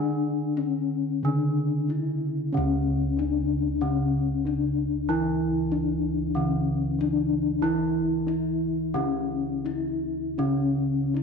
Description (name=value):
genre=Javanese gamelan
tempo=76-94 BPM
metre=4/4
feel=straight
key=unclear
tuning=A4 = 440 Hz
part: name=gamelan-type bronze metallophone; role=melody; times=0.0-11.2 s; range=C#4 to E4-30c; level=-27 LUFS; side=left 9 dB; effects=none
part: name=gamelan-type bronze metallophone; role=accompaniment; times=0.0-11.2 s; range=C#3 to E3-30c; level=-28 LUFS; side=right 2 dB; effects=none
part: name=gamelan-type bossed gongs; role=bass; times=0.0-11.2 s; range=C#2 to E4-30c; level=-30 LUFS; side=right 3 dB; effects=none
room=moderate echo chamber reverb, RT60 1.7 s, studio reverb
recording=none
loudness=-24 LUFS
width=side -5 dB against mid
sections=0.0-2.5 A section; 2.5-11.2 B section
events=none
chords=none